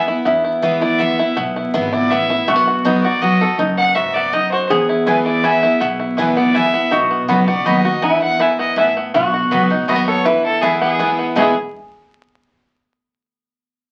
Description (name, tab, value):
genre	bluegrass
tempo	162 BPM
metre	3/4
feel	straight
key	E major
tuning	A4 = 440 Hz
part	bluegrass banjo	melody	0.0-11.6 s	E3 to A4	-23 LUFS	equal	none
part	lap resonator guitar	second line	0.0-11.5 s	E4 to G#4	-22 LUFS	equal	none
part	picked steel-string acoustic guitar	accompaniment	0.0-11.5 s	E2 to F#4	-22 LUFS	equal	none
part	upright bass	bass	0.3-11.5 s	F#1 to E2	-33 LUFS	equal	none
part	clear fiddle	melody	0.6-11.5 s	G#4 to G#5	-22 LUFS	equal	none
part	mandolin	stabs	5.1-11.5 s	B3 to B5	-23 LUFS	equal	none
room	wet club reverb, RT60 0.5 s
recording	very old 78 rpm record, vinyl crackle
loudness	-16 LUFS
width	mono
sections	0.3-9.1 A section; 9.1-11.4 B section; 11.4-12.5 C section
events	none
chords	0.3 E; 2.5 B; 4.7 E; 6.9 B; 8.0 E; 9.1 B; 10.3 E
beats	| 0.26 0.63 1.00 | 1.37 1.74 2.11 | 2.48 2.85 3.22 | 3.59 3.96 4.33 | 4.70 5.07 5.44 | 5.81 6.18 6.55 | 6.92 7.29 7.66 | 8.03 8.40 8.77 | 9.14 9.52 9.89 | 10.26 10.63 11.00 | 11.37